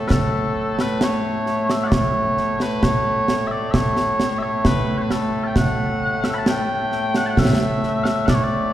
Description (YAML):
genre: scottish traditional, Scottish pipe music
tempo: 66 BPM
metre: 3/4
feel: straight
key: A mixolydian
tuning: A4 = 440 Hz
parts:
  - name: mellow small bagpipes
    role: melody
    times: 0.0-8.7 s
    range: A2 to B5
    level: -20 LUFS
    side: equal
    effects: none
  - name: concert snare drum and concert bass drum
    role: drums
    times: 0.1-8.5 s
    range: none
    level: -21 LUFS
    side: right 1 dB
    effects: none
room: wet concert hall reverb, RT60 2.5 s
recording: heard from further back in the room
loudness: -18 LUFS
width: side -12 dB against mid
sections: 0.0-8.7 A section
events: none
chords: none